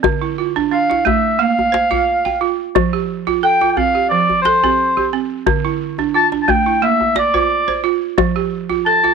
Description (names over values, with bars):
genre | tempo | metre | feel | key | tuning
west african traditional, West African string and xylophone music | 88 BPM | 4/4 | straight | F major | A4 = 441 Hz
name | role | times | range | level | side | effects
balafon | arpeggios | 0.0-9.1 s | D3 to G5 | -18 LUFS | right 12 dB | none
djembe | percussion | 0.0-9.1 s | none | -20 LUFS | left 6 dB | none
warm oboe | melody | 0.7-9.1 s | C5 to A5 | -14 LUFS | left 1 dB | none
room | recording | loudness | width
light reverb, small room ambience | 1960s-style stereo with parts hard left and right | -14 LUFS | side -6 dB against mid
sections
0.0-2.7 A section; 2.7-9.1 A section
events
none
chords
0.0 Dm; 1.4 Bb5; 2.7 F; 5.5 Dm; 6.8 Bb; 8.2 F